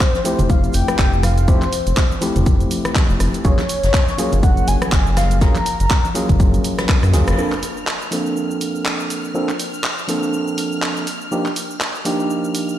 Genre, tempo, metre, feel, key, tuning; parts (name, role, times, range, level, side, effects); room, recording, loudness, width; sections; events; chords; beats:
deep house; 122 BPM; 4/4; swing 57% on 16ths; A4 = 439 Hz
warm velvety synth lead; melody; 0.0-6.1 s; C5 to Bb5; -23 LUFS; left 1 dB; chorus, tremolo, ping-pong delay
electronic kick drum; drums; 0.0-7.0 s; -16 LUFS; equal
house drum kit; drums; 0.0-12.8 s; handclaps, hi-hat, rim click, shaker; -24 LUFS; equal
jazz brush drum kit; drums; 0.0-7.4 s; hi-hat, shaker, snare drum; -34 LUFS; left 1 dB
congas; percussion; 0.1-7.2 s; -28 LUFS; right 1 dB
overdriven tine electric piano; stabs; 0.2-12.8 s; F3 to A4; -22 LUFS; equal; sidechain pumping, low-pass filter, ping-pong delay
round analog bass; bass; 0.4-7.3 s; F1 to Gb2; -17 LUFS; equal; sidechain pumping
string machine, violins; texture; 7.4-12.8 s; F6; -32 LUFS; left 1 dB; ensemble chorus, sidechain pumping
light reverb, studio reverb; played on a big sound system in a bare room, large studio reverb; -15 LUFS; side -12 dB against mid
0.0-7.4 A section; 7.4-12.8 B section
drum fill 6.9-7.4; band accent 7.3
0.0 Fmaj9; 3.4 Gbmaj9; 7.4 Bbmaj9; 11.1 Ebmaj9
0.01 0.50 0.99 | 1.48 1.97 2.46 2.96 | 3.45 3.94 4.43 4.92 | 5.42 5.91 6.40 6.89 | 7.38 7.87 8.37 8.86 | 9.35 9.84 10.33 10.82 | 11.32 11.81 12.30